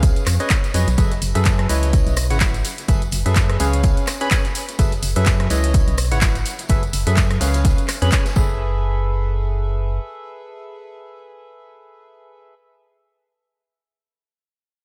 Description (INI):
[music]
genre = piano house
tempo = 126 BPM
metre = 4/4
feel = swing 56% on 16ths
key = F# dorian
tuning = A4 = 440 Hz
[part]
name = percussive organ stab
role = riff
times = 0.0-12.5 s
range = C#3 to B5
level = -28 LUFS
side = equal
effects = lush chorus, sidechain pumping, tape echo
[part]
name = organ-like FM bass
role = bass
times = 0.0-10.0 s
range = F#1 to F#2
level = -22 LUFS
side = equal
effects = tube saturation, sidechain pumping
[part]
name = electronic kick drum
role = drums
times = 0.0-8.5 s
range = none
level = -21 LUFS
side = equal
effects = none
[part]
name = punchy analog drum machine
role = drums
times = 0.0-8.3 s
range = handclaps, hi-hat, rim click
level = -28 LUFS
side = equal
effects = none
[part]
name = tambourine and snare drum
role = drums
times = 0.0-8.4 s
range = none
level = -38 LUFS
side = equal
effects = none
[part]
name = tambourine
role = percussion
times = 0.0-8.6 s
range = none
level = -37 LUFS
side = equal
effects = none
[sound]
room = light reverb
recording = none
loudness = -19 LUFS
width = mono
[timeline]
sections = 0.0-8.6 A section; 8.6-12.4 B section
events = drop 0.0-8.6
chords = 0.0 C#7; 1.0 F#m11; 1.7 C#m9; 2.6 F#m11; 3.8 C#7; 4.8 F#m11; 5.5 C#m9; 6.5 F#m11; 7.6 C#7; 8.4 F#m11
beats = 0.03 0.51 | 0.98 1.46 1.93 2.41 | 2.88 3.36 3.84 4.31 | 4.79 5.27 5.74 6.22 | 6.70 7.17 7.65 8.12 | 8.60 9.08 9.55 10.03 | 10.51 10.98 11.46 11.93